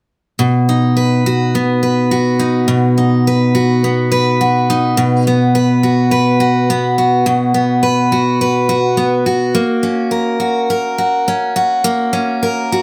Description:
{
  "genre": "pop",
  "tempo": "105 BPM",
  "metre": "4/4",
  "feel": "straight",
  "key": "B major",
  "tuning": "A4 = 440 Hz",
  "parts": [
    { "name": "picked steel-string acoustic guitar", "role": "accompaniment", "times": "0.4-12.8 s", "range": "B2 to B4", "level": "-14 LUFS", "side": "equal", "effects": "none" }
  ],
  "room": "moderate studio reverb, RT60 0.8 s",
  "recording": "none",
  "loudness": "-14 LUFS",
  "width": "mono",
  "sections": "0.4-5.0 A section; 5.0-12.8 B section",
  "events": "none",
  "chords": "0.4 B; 9.6 F#/A#"
}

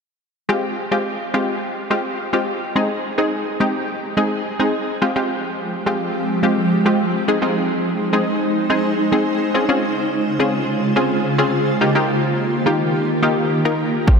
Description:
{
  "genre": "dance-pop",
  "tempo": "106 BPM",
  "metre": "4/4",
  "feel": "straight",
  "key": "F minor",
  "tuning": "A4 = 442 Hz",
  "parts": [
    { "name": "punchy chord stab", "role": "accompaniment", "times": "0.5-14.2 s", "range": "Ab3 to Bb4", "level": "-19 LUFS", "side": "left 1 dB", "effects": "chorus, sidechain pumping" },
    { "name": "granular cloud pad", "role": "sustained chords", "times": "5.6-14.2 s", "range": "Db3 to C5", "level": "-19 LUFS", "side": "right 1 dB", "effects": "built-in reverb, sidechain pumping" },
    { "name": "electronic kick drum", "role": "drums", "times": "14.1-14.2 s", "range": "none", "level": "-10 LUFS", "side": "equal", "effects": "none" }
  ],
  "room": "wet huge ambient reverb, RT60 4.2 s",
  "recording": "dreamy mix soaked in reverb",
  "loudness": "-17 LUFS",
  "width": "side -5 dB against mid",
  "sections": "0.5-5.0 A section; 5.0-14.2 B section",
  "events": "none",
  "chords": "0.5 Fmadd9; 2.8 Ab; 5.0 Fmadd9; 7.3 Ab; 9.5 Dbmaj7; 11.8 Ebadd9"
}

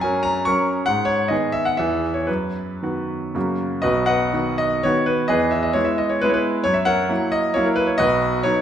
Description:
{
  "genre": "classical, romantic triple-time dance for piano with dotted rhythms",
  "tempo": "107-146 BPM",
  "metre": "3/4",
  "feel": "rubato",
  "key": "B major",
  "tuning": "A4 = 440 Hz",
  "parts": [
    { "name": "clear grand piano", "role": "solo", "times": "0.0-8.6 s", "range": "B1 to C#6", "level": "-18 LUFS", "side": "equal", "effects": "none" }
  ],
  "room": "moderate scoring stage reverb, RT60 1.7 s",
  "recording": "recorded in a church or concert hall, nothing above 10.7 kHz",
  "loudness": "-18 LUFS",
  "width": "side -9 dB against mid",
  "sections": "0.0-3.8 A section; 3.8-8.6 B section",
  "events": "none",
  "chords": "0.0 F#; 0.9 G#m; 1.8 E; 2.3 B/F#; 3.4 F#; 3.8 B; 5.3 E; 6.7 F#7; 8.0 B"
}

